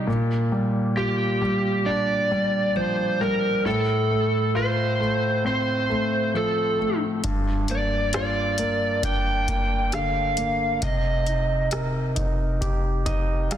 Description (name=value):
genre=pop ballad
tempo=67 BPM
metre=4/4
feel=straight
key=G minor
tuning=A4 = 438 Hz
part: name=clear concert grand piano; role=accompaniment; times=0.0-13.6 s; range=G2 to F5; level=-25 LUFS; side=equal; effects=none
part: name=lead guitar through a small cranked amp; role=melody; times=1.0-11.7 s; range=G4 to G5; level=-24 LUFS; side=right 1 dB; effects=overdrive
part: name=booming analog drum machine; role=drums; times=7.2-13.6 s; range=hi-hat, kick drum, rim click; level=-26 LUFS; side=equal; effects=soft clipping on snare
room=light reverb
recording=dense, heavily limited modern master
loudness=-21 LUFS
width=side -10 dB against mid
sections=0.0-13.6 A section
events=grand piano fill 12.6-13.6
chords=0.1 Bb6; 3.7 F/A; 7.2 Gm7; 10.8 Cm7